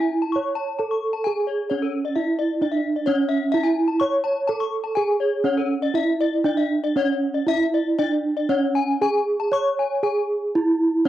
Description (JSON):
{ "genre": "gamelan", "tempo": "117-131 BPM", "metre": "4/4", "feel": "straight", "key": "C# pelog", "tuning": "A4 = 440 Hz", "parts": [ { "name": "gamelan-type bronze metallophone", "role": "melody", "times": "0.0-11.1 s", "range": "C#4 to C#5", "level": "-21 LUFS", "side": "right 2 dB", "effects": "none" }, { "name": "gamelan-type bronze metallophone", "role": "arpeggios", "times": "0.0-11.1 s", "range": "A4 to C#6", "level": "-26 LUFS", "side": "left 7 dB", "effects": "none" } ], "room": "wet spring reverb, RT60 1.3 s, studio reverb", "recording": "home recording on cassette", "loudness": "-20 LUFS", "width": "side -12 dB against mid", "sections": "0.0-7.0 A section; 7.0-11.1 B section", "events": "none", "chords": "none" }